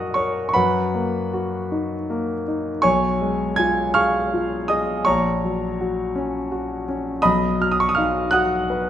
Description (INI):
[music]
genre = classical, romantic character piece for solo piano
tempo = 54 BPM (dotted quarters)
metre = 6/8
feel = rubato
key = F# major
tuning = A4 = 438 Hz
[part]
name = warm concert grand piano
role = solo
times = 0.0-8.9 s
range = A#1 to G#6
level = -19 LUFS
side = equal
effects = none
[sound]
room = moderate recital hall reverb, RT60 1.3 s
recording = none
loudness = -19 LUFS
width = side -10 dB against mid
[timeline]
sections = 0.0-8.9 A section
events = none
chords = 0.0 F#; 0.5 Bmaj7/F#; 2.8 C#7/B; 5.1 F#/A#; 7.2 B